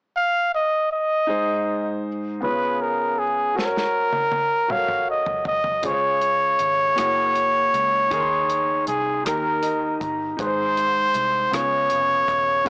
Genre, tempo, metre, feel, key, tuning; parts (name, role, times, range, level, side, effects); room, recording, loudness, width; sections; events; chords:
slow gospel; 53 BPM (dotted quarters); 6/8; straight; Ab major; A4 = 439 Hz
clear trumpet; melody; 0.2-12.7 s; Ab4 to F5; -19 LUFS; equal
clear concert grand piano; accompaniment; 1.3-12.7 s; Ab2 to C6; -27 LUFS; equal
warm soul drum kit; drums; 3.6-12.7 s; hi-hat, kick drum, rim click, snare drum, toms; -31 LUFS; equal
vintage muted fingered electric bass; bass; 5.8-12.7 s; Eb1 to Eb2; -38 LUFS; equal
light reverb, small room ambience; blown-out, overdriven recording, overdrive, small speaker sound; -19 LUFS; side -30 dB against mid
0.0-1.3 A section; 1.3-10.4 B section; 10.4-12.7 C section
drum fill 3.6-5.8; grand piano fill 9.3-10.4
0.0 N.C.; 1.3 Ab; 2.4 Db7; 3.6 Gb; 5.8 Db; 7.0 Gb9; 8.1 Ab/Eb; 9.3 Eb; 10.4 Ab; 11.5 Db7